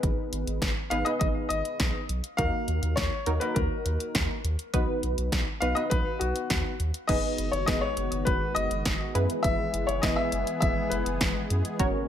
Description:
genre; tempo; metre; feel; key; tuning
synth-pop; 102 BPM; 4/4; straight; unclear; A4 = 441 Hz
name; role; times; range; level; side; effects
funky polysynth comp; accompaniment; 0.0-12.1 s; A#3 to C#5; -32 LUFS; right 1 dB; chorus
round analog bass; bass; 0.0-11.9 s; F#1 to F#2; -30 LUFS; equal; none
punchy analog drum machine; drums; 0.0-11.9 s; crash cymbal, hi-hat, kick drum, snare drum; -29 LUFS; equal; none
clear baby grand piano; melody; 0.9-11.5 s; F#4 to E#5; -30 LUFS; left 3 dB; tape echo
sweeping resonant pad; sustained chords; 7.1-12.1 s; C#3 to G#4; -34 LUFS; equal; chorus
room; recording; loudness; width
light reverb; none; -25 LUFS; side -10 dB against mid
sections
0.0-7.1 A section; 7.1-12.1 B section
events
none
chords
0.0 G#m; 2.4 D#madd9; 4.7 B; 7.1 G#m7/F#; 9.1 E/F#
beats
| 0.03 0.62 1.21 1.80 | 2.38 2.97 3.56 4.15 | 4.74 5.33 5.91 6.50 | 7.09 7.68 8.27 8.86 | 9.44 10.03 10.62 11.21 | 11.80

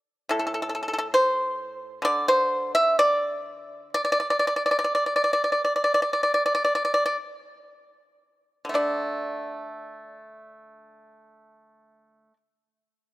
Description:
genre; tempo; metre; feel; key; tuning
chinese traditional, Chinese solo plucked strings; 42-72 BPM; 4/4; rubato; unclear; A4 = 440 Hz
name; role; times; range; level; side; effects
pipa; solo; 0.3-12.4 s; A2 to E5; -22 LUFS; equal; none
room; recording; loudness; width
light reverb, small room reverb; rough home demo mix; -22 LUFS; side -17 dB against mid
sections
0.0-8.8 A section; 8.8-13.1 B section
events
slowing down 0.3-8.8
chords
none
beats
| 0.32 1.16 2.04 2.96 | 3.92 4.95 6.09 7.37 | 8.77 10.14 11.45

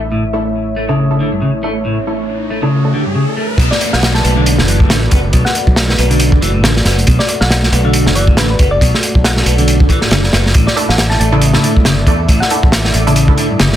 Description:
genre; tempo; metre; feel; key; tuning
breakbeat, breaks; 138 BPM; 4/4; swing 56% on 16ths; B minor; A4 = 439 Hz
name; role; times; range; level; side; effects
dark analog pad; sustained chords; 0.0-13.8 s; A3 to E5; -22 LUFS; equal; chorus, sidechain pumping
fingered electric bass; bass; 0.0-13.8 s; F#1 to A2; -16 LUFS; equal; tube saturation
semi-hollow electric guitar; riff; 0.1-13.7 s; G2 to B3; -16 LUFS; equal; ping-pong delay
riser and downlifter; sound effects; 1.6-7.1 s; none; -24 LUFS; left 1 dB; none
orchestra-hit-like synth stab; stabs; 0.3-2.9, 10.8-13.4 s; A3 to A4; -21 LUFS; right 2 dB; built-in reverb, ping-pong delay
crunchy breakbeat drum kit; drums; 3.6-13.8 s; hi-hat, kick drum, snare drum; -12 LUFS; equal; none
thumb-piano-like synth pluck; melody; 3.7-13.0 s; B4 to A5; -21 LUFS; left 2 dB; chorus, phaser, telephone sound, ping-pong delay
room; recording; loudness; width
light reverb; dense, heavily limited modern master; -10 LUFS; side -11 dB against mid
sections
0.0-3.6 A section; 3.6-13.8 B section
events
filter sweep on clean electric guitar 0.0-3.6; riser 1.6-3.6; drop 3.6-13.8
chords
0.0 Asus4; 3.6 Bm7; 10.6 Asus4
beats
| 0.12 0.55 0.98 1.42 | 1.85 2.29 2.72 3.16 | 3.59 4.03 4.46 4.90 | 5.33 5.77 6.20 6.64 | 7.07 7.51 7.94 8.38 | 8.81 9.25 9.68 10.12 | 10.55 10.98 11.42 11.85 | 12.29 12.72 13.16 13.59

